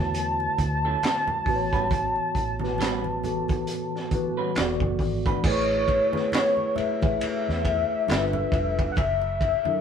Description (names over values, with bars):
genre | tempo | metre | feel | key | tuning
R&B, neo-soul | 68 BPM | 4/4 | swing 58% on 16ths | A major | A4 = 439 Hz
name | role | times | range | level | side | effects
warm velvety synth lead | melody | 0.0-9.8 s | C#5 to A5 | -26 LUFS | left 2 dB | chorus
mellow tine electric piano | accompaniment | 0.0-9.8 s | A2 to E5 | -28 LUFS | left 1 dB | medium stereo tremolo
vintage muted fingered electric bass | bass | 0.0-9.5 s | E1 to E2 | -31 LUFS | equal | none
crunchy breakbeat drum kit | drums | 0.1-9.7 s | crash cymbal, handclaps, hi-hat, kick drum, ride cymbal, snare drum | -28 LUFS | right 1 dB | none
congas | percussion | 0.1-9.8 s | none | -37 LUFS | right 2 dB | none
electric guitar through a small old amp | second line | 0.8-5.4 s | F#3 to B4 | -31 LUFS | right 6 dB | none
room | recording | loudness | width
moderate studio reverb, RT60 0.8 s | band playing live in one room | -22 LUFS | side -7 dB against mid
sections
0.0-5.4 A section; 5.4-9.8 B section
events
none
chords
0.0 Dmaj9; 1.5 A13; 4.6 E9sus4; 5.4 Amaj7; 8.1 G9; 9.0 F#7alt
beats
0.15 1.03 | 1.91 2.79 3.67 4.56 | 5.44 6.32 7.21 8.09 | 8.97